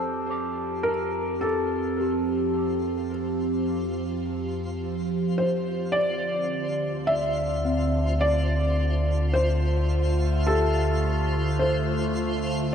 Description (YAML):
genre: ambient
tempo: 53 BPM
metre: 4/4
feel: straight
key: F major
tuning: A4 = 440 Hz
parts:
  - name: felt-muted upright piano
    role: melody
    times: 0.0-12.7 s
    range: A4 to E5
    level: -28 LUFS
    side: left 1 dB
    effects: tape echo
  - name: evolving wavetable pad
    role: sustained chords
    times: 0.0-12.7 s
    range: D3 to A5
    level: -27 LUFS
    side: right 1 dB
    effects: phaser, built-in reverb
  - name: celesta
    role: arpeggios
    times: 0.0-12.7 s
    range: C4 to D6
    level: -33 LUFS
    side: left 1 dB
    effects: tape echo
  - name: deep rumbling drone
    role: bass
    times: 0.0-12.7 s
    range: D2 to F2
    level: -28 LUFS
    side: equal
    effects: built-in reverb
  - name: twinkling granular texture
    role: texture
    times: 0.0-12.7 s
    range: F4 to C5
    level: -38 LUFS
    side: right 1 dB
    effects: built-in reverb
room: wet cathedral reverb, RT60 4.9 s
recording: none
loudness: -23 LUFS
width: side -8 dB against mid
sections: 0.0-12.7 A section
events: fade-in on synth texture 0.0-12.7; filter sweep on ambient pad 0.0-12.7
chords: 0.0 Fmaj7; 6.0 Dm7